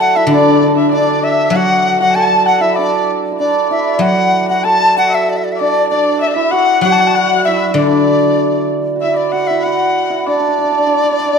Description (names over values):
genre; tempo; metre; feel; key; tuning
chinese traditional, Chinese chamber ensemble; 97 BPM; 2/4; straight; D gong mode; A4 = 440 Hz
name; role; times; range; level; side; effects
bright large dizi; melody; 0.0-11.4 s; D5 to A5; -16 LUFS; left 1 dB; none
hammered dulcimer; second line; 0.0-11.4 s; D4 to A4; -16 LUFS; right 5 dB; none
warm erhu; second line; 0.0-11.4 s; D5 to A5; -18 LUFS; left 7 dB; none
guzheng; accompaniment; 0.0-9.6 s; D3 to F#3; -17 LUFS; left 4 dB; none
room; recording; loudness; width
wet recital hall reverb, RT60 1.9 s; none; -11 LUFS; side -6 dB against mid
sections
0.0-9.0 A section; 9.0-11.4 B section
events
none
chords
none